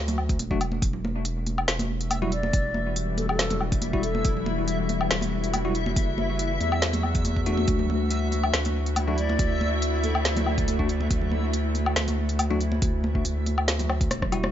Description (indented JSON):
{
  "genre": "deep dubstep",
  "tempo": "140 BPM",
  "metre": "4/4",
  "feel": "swing 54% on 16ths, half-time",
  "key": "E minor",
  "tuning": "A4 = 440 Hz",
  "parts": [
    { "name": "saturated sub bass", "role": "bass", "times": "0.0-14.5 s", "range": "E1 to E2", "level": "-27 LUFS", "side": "equal", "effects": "none" },
    { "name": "deep house drum kit", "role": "drums", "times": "0.1-14.5 s", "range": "hi-hat, rim click, snare drum, woodblock", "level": "-28 LUFS", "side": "left 1 dB", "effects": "none" },
    { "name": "congas", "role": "percussion", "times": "0.1-14.5 s", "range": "none", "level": "-33 LUFS", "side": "right 2 dB", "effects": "dub echo" },
    { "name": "electronic kick drum", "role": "drums", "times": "0.3-14.3 s", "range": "none", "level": "-26 LUFS", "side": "equal", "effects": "none" },
    { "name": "bell-like tine electric piano", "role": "stabs", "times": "0.5-14.5 s", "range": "G3 to F#4", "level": "-32 LUFS", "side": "left 2 dB", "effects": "fast stereo tremolo, dub echo" },
    { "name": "bowed-like drone", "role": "sustained chords", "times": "2.0-14.5 s", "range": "D3 to F#4", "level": "-33 LUFS", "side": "left 1 dB", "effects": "built-in reverb" },
    { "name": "backwards swelling texture", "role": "texture", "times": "2.1-14.5 s", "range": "E4 to E5", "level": "-33 LUFS", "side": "left 2 dB", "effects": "built-in reverb" },
    { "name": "breathy low ney", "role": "melody", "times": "2.3-4.5, 9.2-10.1 s", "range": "A4 to D5", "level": "-34 LUFS", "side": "left 1 dB", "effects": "dub echo" }
  ],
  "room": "light reverb",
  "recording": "echo-heavy mix, nothing above 7.5 kHz",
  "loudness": "-23 LUFS",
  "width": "side -10 dB against mid",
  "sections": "0.0-14.5 A section",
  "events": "drum fill 13.9-14.5",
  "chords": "0.0 N.C.; 0.8 Emadd9"
}